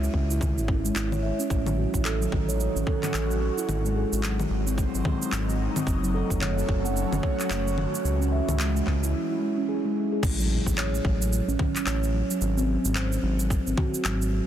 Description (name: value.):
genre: organic downtempo.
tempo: 110 BPM.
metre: 4/4.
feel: swing 60% on 16ths.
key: unclear.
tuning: A4 = 441 Hz.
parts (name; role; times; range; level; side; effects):
steel tongue drum; arpeggios; 0.0-14.5 s; F#3 to F#5; -28 LUFS; right 2 dB; digital delay.
round analog bass; bass; 0.0-14.4 s; F#1 to C#2; -27 LUFS; equal; none.
afro-pop drum kit; drums; 0.0-14.3 s; congas, crash cymbal, handclaps, shaker; -32 LUFS; left 1 dB; none.
electronic kick drum; drums; 0.1-13.9 s; none; -27 LUFS; equal; none.
airy breathy pad; sustained chords; 1.9-9.1 s; D#3 to F#4; -33 LUFS; equal; chorus, phaser, sidechain pumping.
impact; sound effects; 10.2-12.4 s; none; -35 LUFS; equal; none.
room: light reverb, digital ambience.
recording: dense, heavily limited modern master.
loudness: -23 LUFS.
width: side -10 dB against mid.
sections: 0.0-10.2 A section; 10.2-14.5 B section.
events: break 9.1-10.2; impact 10.2-12.4.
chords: 0.0 C#m; 1.5 A6; 3.7 G#7; 5.9 F#m; 8.0 C#m; 10.2 A6; 12.4 G#7.